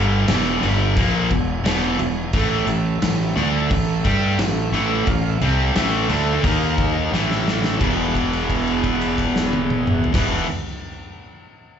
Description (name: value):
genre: blues rock power trio and southern rock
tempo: 88 BPM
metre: 4/4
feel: straight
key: unclear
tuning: A4 = 440 Hz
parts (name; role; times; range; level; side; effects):
- overdriven tonewheel organ; sustained chords; 0.0-10.5 s; A3 to G#5; -30 LUFS; right 3 dB; slow rotary speaker
- distorted electric guitar; riff; 0.0-10.5 s; E2 to G4; -21 LUFS; left 1 dB; distortion, slapback echo
- fuzz fingered electric bass; bass; 0.0-10.4 s; E1 to G2; -22 LUFS; equal; overdrive
- big rock drum kit; drums; 0.3-10.3 s; crash cymbal, kick drum, snare drum, toms; -24 LUFS; equal; none
room: little or no reverb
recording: live gig heard through the venue's PA, club reverb, nothing above 7.8 kHz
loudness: -17 LUFS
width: side -8 dB against mid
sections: 0.0-7.8 A section; 7.8-10.6 B section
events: drum fill 7.1-7.8; held note 7.8-10.1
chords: 0.0 E; 2.3 A5; 6.4 D#5; 7.1 A5; 7.8 E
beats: 0.29 0.97 1.65 | 2.34 3.02 3.71 4.39 | 5.08 5.76 6.45 7.13 | 7.82 8.50 9.19 9.87